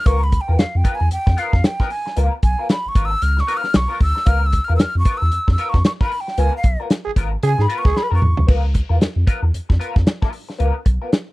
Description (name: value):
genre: funk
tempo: 114 BPM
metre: 4/4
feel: swing 60% on 16ths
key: Db mixolydian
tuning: A4 = 440 Hz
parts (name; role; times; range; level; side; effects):
- breathy jazz flute; melody; 0.0-8.5 s; F5 to F6; -22 LUFS; equal; none
- clean electric guitar; accompaniment; 0.1-11.2 s; Cb4 to Bb4; -27 LUFS; left 4 dB; wah, ensemble chorus
- round analog bass; bass; 0.1-11.0 s; Ab1 to Db3; -18 LUFS; equal; none
- warm soul drum kit; drums; 0.1-11.3 s; crash cymbal, hi-hat, kick drum, snare drum, toms; -17 LUFS; equal; none
- growling trombone; second line; 7.0-8.1 s; Ab4; -23 LUFS; right 4 dB; none
room: small room ambience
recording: dry, close 1970s-style studio recording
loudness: -16 LUFS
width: side -20 dB against mid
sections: 0.0-8.5 A section; 8.5-11.3 B section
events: flute solo 0.0-8.5; band accent 6.4-8.5; drum fill 8.0-8.5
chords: 0.0 Db6